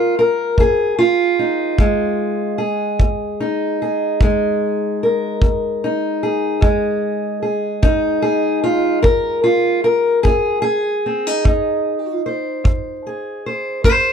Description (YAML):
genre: acoustic country blues, solo or duo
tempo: 50 BPM (dotted quarters)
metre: 12/8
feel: straight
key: F minor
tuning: A4 = 440 Hz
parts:
  - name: fingerpicked steel-string acoustic guitar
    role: melody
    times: 0.0-14.1 s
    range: F2 to C5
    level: -16 LUFS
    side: equal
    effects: none
  - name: kick drum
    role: drums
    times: 0.6-14.0 s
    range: none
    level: -15 LUFS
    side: equal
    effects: none
room: little or no reverb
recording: close, detailed microphones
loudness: -15 LUFS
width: side -7 dB against mid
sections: 0.0-14.1 A section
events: none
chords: 0.0 Fm7